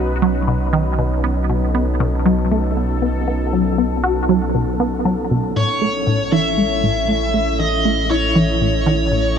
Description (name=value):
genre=ambient, sequencer-driven space music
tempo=118 BPM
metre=4/4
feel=straight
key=unclear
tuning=A4 = 442 Hz
part: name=sweeping resonant pad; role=sustained chords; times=0.0-9.4 s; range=F#3 to B4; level=-23 LUFS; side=right 1 dB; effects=chorus
part: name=resonant blip pluck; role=riff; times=0.0-9.3 s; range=A2 to F#4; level=-19 LUFS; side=equal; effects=chorus, phaser, tape echo
part: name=warm sub bass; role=bass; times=0.0-9.4 s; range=A1 to B1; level=-22 LUFS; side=equal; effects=none
part: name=high-gain lead guitar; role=melody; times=5.6-9.4 s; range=C#5 to E5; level=-19 LUFS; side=left 2 dB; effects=distortion, tape echo
room=moderate huge ambient reverb, RT60 8.4 s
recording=none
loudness=-15 LUFS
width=side -7 dB against mid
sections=0.0-9.4 A section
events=none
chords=0.0 Badd9; 5.6 A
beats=0.48 0.99 | 1.50 2.00 2.51 3.02 | 3.53 4.04 4.55 5.06 | 5.56 6.07 6.58 7.09 | 7.60 8.11 8.62 9.12